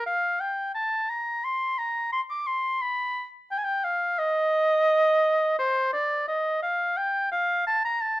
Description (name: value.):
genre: classical, baroque-style fantasia for unaccompanied oboe.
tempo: 87 BPM.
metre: 4/4.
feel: rubato.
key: unclear.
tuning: A4 = 440 Hz.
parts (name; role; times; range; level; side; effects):
warm oboe; solo; 0.0-8.2 s; C5 to D6; -23 LUFS; equal; none.
room: moderate stone room reverb, RT60 1.0 s.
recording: dark, warm production.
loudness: -23 LUFS.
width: side -16 dB against mid.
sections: 0.0-8.2 A section.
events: none.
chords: none.